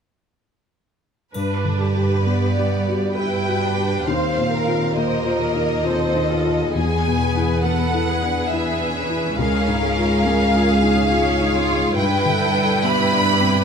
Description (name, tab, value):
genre	cinematic, emotional film score for orchestra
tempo	68 BPM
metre	3/4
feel	rubato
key	unclear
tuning	A4 = 440 Hz
part	bright symphonic violin section	second line	1.3-13.6 s	Bb3 to C#5	-26 LUFS	left 1 dB	none
part	dark chamber viola section	accompaniment	1.3-13.6 s	F4 to C5	-25 LUFS	right 3 dB	none
part	rich symphonic cello section	bass	1.3-13.6 s	C#2 to G2	-22 LUFS	right 3 dB	none
part	triangle	percussion	1.3-3.1 s	none	-44 LUFS	left 3 dB	none
part	felt-muted upright piano	accompaniment	1.4-13.6 s	C#2 to G4	-23 LUFS	left 4 dB	none
part	warm symphonic violin section	melody	2.3-13.6 s	D5 to B5	-23 LUFS	left 1 dB	none
room	light reverb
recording	close, detailed microphones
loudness	-17 LUFS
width	side -6 dB against mid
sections	1.3-13.6 A section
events	none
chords	1.3 G; 4.1 Ebsus2; 6.8 E; 9.4 C#; 12.0 G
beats	| 1.35 2.25 3.17 | 4.07 4.96 5.84 | 6.76 7.64 8.52 | 9.38 10.25 11.11 | 11.97 12.83